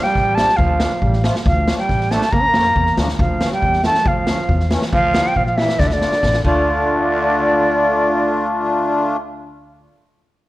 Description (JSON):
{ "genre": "klezmer", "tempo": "138 BPM", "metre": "2/4", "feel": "straight", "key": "D harmonic minor", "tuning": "A4 = 439 Hz", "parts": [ { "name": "mellow silver concert flute", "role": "melody", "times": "0.0-9.2 s", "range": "D5 to Bb5", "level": "-18 LUFS", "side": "equal", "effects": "none" }, { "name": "growling trombone", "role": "second line", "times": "0.0-9.2 s", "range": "D3 to C#4", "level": "-24 LUFS", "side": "right 2 dB", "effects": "none" }, { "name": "accordion", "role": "accompaniment", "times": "0.0-9.2 s", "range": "E3 to F4", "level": "-21 LUFS", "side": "left 1 dB", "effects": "light tremolo tuning" }, { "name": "street-band drum kit", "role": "drums", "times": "0.1-6.5 s", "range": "crash cymbal, kick drum, snare drum", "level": "-20 LUFS", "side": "equal", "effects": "none" }, { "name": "upright bass", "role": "bass", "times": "0.2-9.9 s", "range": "A1 to Bb2", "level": "-22 LUFS", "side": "equal", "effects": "tube saturation" } ], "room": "moderate recital hall reverb, RT60 1.5 s", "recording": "worn, warbling old tape, cassette tape, warbly pitch drift", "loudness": "-14 LUFS", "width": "side -17 dB against mid", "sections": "0.0-6.7 A section; 6.7-8.4 B section", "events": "drum fill 5.8-6.7", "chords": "0.0 Dm; 3.2 A/D; 4.9 Edim/D; 5.8 Dm" }